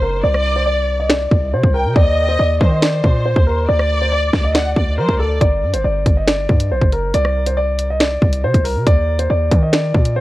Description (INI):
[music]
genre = hip hop, drill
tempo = 139 BPM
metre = 4/4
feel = half-time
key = unclear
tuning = A4 = 442 Hz
[part]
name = dark grand piano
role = melody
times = 0.0-10.2 s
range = A4 to Eb5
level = -19 LUFS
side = equal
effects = low-pass filter, digital delay
[part]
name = rich studio violin section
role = second line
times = 0.0-5.4 s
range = C5 to G5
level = -23 LUFS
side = equal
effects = digital delay
[part]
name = hard-hitting 808-style bass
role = bass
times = 0.0-10.2 s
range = F#1 to F#3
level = -18 LUFS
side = equal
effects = none
[part]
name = drill drum kit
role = drums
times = 0.3-10.2 s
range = finger snaps, hi-hat, kick drum, rim click, snare drum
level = -15 LUFS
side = equal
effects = none
[sound]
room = small room ambience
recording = worn, warbling old tape, cassette tape, warbly pitch drift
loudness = -13 LUFS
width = side -16 dB against mid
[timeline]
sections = 0.0-10.2 A section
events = break 0.0-5.4; filter sweep on grand piano 0.0-5.4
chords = 0.2 Csus2; 2.0 Eb5; 3.7 N.C.; 5.4 G5; 7.1 Csus2; 8.9 Eb5